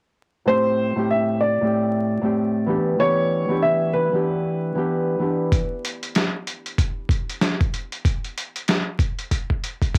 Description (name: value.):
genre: hip hop, boom-bap hip-hop.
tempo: 95 BPM.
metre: 4/4.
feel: swing 59% on 16ths.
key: A minor.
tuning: A4 = 440 Hz.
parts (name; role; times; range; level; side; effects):
dark upright piano; melody; 0.5-5.5 s; B4 to E5; -25 LUFS; equal; cassette tape.
Celtic harp; accompaniment; 0.5-5.6 s; A2 to G4; -24 LUFS; equal; cassette tape.
dusty soul sampler-style drum kit; drums; 5.5-10.0 s; hi-hat, kick drum, snare drum; -24 LUFS; equal; overdrive, cassette tape.
room: little or no reverb.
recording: home recording on cassette, vinyl crackle.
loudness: -22 LUFS.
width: mono.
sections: 0.5-10.0 A section.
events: break 5.5-10.0; drum fill 9.3-10.0.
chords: 0.5 Am7; 2.7 Em7; 5.5 N.C..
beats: | 0.47 1.10 1.73 2.36 | 3.00 3.63 4.26 4.89 | 5.52 6.15 6.79 7.42 | 8.05 8.68 9.31 9.94.